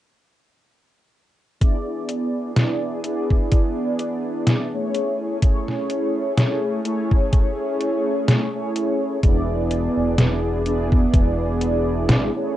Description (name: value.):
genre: vaporwave.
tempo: 63 BPM.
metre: 4/4.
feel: swing 55% on 16ths.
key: unclear.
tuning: A4 = 441 Hz.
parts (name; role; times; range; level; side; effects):
mellow synth brass; accompaniment; 1.6-12.6 s; A3 to D5; -22 LUFS; equal; wide subtle chorus, analog delay.
lush unison pad; sustained chords; 1.6-12.5 s; E3 to G#4; -32 LUFS; equal; chorus.
detuned 8-bit digital drum machine; drums; 1.6-12.3 s; hi-hat, snare drum; -20 LUFS; equal; none.
electronic kick drum; drums; 1.6-11.3 s; none; -17 LUFS; equal; none.
growling fingered electric bass; bass; 9.2-12.3 s; E1 to G#1; -24 LUFS; equal; overdrive.
room: wet small room reverb, RT60 0.5 s.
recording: rough home demo mix, cassette tape, nothing above 10.5 kHz.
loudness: -18 LUFS.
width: side -13 dB against mid.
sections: 1.6-12.6 A section.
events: none.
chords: 1.6 E7; 4.9 Amaj7; 9.2 E7.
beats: | 1.61 2.57 3.52 4.47 | 5.42 6.38 7.33 8.28 | 9.23 10.19 11.14 12.09.